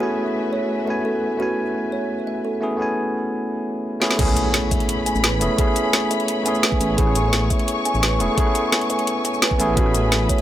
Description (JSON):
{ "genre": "liquid drum and bass", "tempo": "172 BPM", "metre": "4/4", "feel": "straight", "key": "A major", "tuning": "A4 = 441 Hz", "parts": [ { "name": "bell-like tine electric piano", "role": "accompaniment", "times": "0.0-10.4 s", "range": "A3 to G#5", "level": "-22 LUFS", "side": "equal", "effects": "vintage 12-bit sampler grit, dub echo" }, { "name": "dark studio string section", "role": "sustained chords", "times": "0.0-10.4 s", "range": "A3 to C#6", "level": "-27 LUFS", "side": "left 3 dB", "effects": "sidechain pumping" }, { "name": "kalimba", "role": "arpeggios", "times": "0.0-10.4 s", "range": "F#4 to G#5", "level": "-27 LUFS", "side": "right 4 dB", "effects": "digital delay" }, { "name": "garage drum kit", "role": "drums", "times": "4.0-10.4 s", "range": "crash cymbal, hi-hat, rim click, shaker, snare drum", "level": "-22 LUFS", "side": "equal", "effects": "none" }, { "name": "electronic kick drum", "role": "drums", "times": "4.2-10.4 s", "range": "none", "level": "-21 LUFS", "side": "equal", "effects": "none" }, { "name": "impact", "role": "sound effects", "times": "4.2-5.6 s", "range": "none", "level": "-27 LUFS", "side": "equal", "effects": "none" }, { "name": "dark detuned saw bass", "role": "bass", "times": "5.2-10.3 s", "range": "E1 to A1", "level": "-22 LUFS", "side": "equal", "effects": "none" } ], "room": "light reverb", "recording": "none", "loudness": "-18 LUFS", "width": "side -12 dB against mid", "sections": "0.0-4.2 A section; 4.2-10.4 B section", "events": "drum fill 4.0; drop 4.2-10.4; impact 4.2-5.6", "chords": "0.0 F#m11/A; 4.0 Amaj9; 9.8 F#m11" }